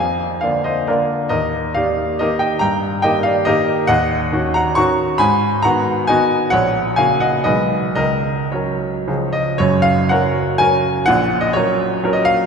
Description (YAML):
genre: classical, romantic triple-time dance for piano with dotted rhythms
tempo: 105-148 BPM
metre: 3/4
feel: rubato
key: Eb major, F# major from 3.9 s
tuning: A4 = 441 Hz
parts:
  - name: clear baby grand piano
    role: solo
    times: 0.0-12.5 s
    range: F#1 to C#6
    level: -14 LUFS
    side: equal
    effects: none
room: wet church reverb, RT60 3.6 s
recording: recorded in a church or concert hall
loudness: -14 LUFS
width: side -6 dB against mid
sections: 0.0-9.6 A section; 9.6-12.5 B section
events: none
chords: 0.0 Bb7/F; 1.3 Eb; 2.6 Eb/G; 3.9 D#m7; 5.2 G#m7; 6.5 F#/A#; 7.5 G#m/B; 8.0 F#/C#; 9.1 C#; 9.6 F#; 11.1 F#/A#